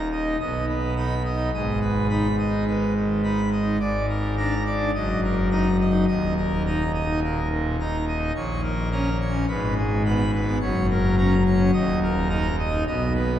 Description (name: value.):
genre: classical, organ toccata.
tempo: 106 BPM.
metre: 4/4.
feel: straight.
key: Eb minor, F# major from 8.4 s.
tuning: A4 = 440 Hz.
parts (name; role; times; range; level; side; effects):
pipe organ, full organ; solo; 0.0-13.4 s; Eb1 to B5; -21 LUFS; equal; none.
room: wet cathedral reverb, RT60 5.1 s.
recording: heard from further back in the room.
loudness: -21 LUFS.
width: side -11 dB against mid.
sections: 0.0-13.4 A section.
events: none.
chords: 0.4 B; 1.5 Abm; 3.8 Bb7/Ab; 5.0 Ebm/Gb; 6.1 Eb5; 8.4 A#m; 9.5 G#m; 10.6 F#; 11.8 D#5; 12.9 B.